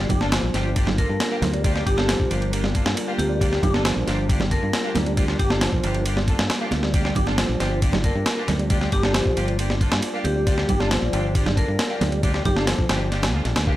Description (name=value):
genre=breakbeat, breaks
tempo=136 BPM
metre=4/4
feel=straight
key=G minor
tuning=A4 = 439 Hz
part: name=deep dark ambient pad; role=sustained chords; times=0.0-13.8 s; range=G3 to D5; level=-31 LUFS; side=left 1 dB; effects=chorus, built-in reverb, sidechain pumping
part: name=tonewheel organ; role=riff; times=0.0-13.7 s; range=F3 to G4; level=-29 LUFS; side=equal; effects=slow rotary speaker, overdrive, tape echo
part: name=fingered electric bass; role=bass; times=0.0-13.8 s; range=G1 to G2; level=-25 LUFS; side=equal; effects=transformer saturation
part: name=breakbeat sampler-style drum kit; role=drums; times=0.1-13.8 s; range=kick drum, ride cymbal, snare drum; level=-23 LUFS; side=equal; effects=small room reverb
part: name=congas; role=percussion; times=0.1-13.3 s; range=none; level=-29 LUFS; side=right 3 dB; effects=none
part: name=bright symphonic string section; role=stabs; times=0.2-13.7 s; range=Bb3 to A4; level=-31 LUFS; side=equal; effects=vintage 12-bit sampler grit, tape echo
part: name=vibraphone with hard mallets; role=melody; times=1.0-12.5 s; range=G4 to Bb4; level=-29 LUFS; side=left 1 dB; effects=AM radio sound, tape echo
room=small room ambience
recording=dry, gritty hardware recording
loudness=-19 LUFS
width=side -15 dB against mid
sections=0.0-13.8 A section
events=none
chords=0.0 Gm7